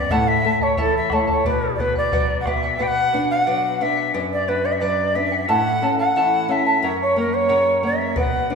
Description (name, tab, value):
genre	andean folk, Andean ensemble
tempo	89 BPM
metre	2/4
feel	straight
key	B minor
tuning	A4 = 441 Hz
part	breathy bright large quena	melody	0.0-8.6 s	A4 to G5	-20 LUFS	equal	none
part	charango	accompaniment	0.0-8.6 s	E4 to A5	-24 LUFS	right 2 dB	none
part	nylon-string guitar	accompaniment	0.0-8.6 s	F#2 to D4	-24 LUFS	left 3 dB	none
part	bombo	percussion	0.1-2.6, 8.2-8.3 s	none	-26 LUFS	right 1 dB	none
room	wet scoring stage reverb, RT60 1.7 s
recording	recorded in a church or concert hall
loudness	-17 LUFS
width	side -5 dB against mid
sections	0.0-2.8 A section; 2.8-8.6 A section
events	none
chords	0.1 A; 1.4 Bm; 5.5 A; 6.8 F#